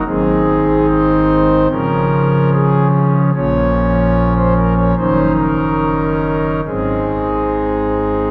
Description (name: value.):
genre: classical, chorale-style piece for pipe organ.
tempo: 73 BPM.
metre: 4/4.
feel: straight.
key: unclear.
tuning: A4 = 441 Hz.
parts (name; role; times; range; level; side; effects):
pipe organ, foundations; solo; 0.0-8.3 s; Gb1 to Db5; -15 LUFS; equal; none.
room: wet church reverb, RT60 3.7 s.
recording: none.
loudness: -15 LUFS.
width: mono.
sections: 0.0-8.3 A section.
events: none.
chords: 0.1 Ab; 1.7 Db; 3.3 Bbm; 5.0 Ebm7/Gb; 6.6 Ab.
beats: | 0.06 0.89 1.71 2.53 | 3.35 4.16 4.98 5.80 | 6.65 7.50.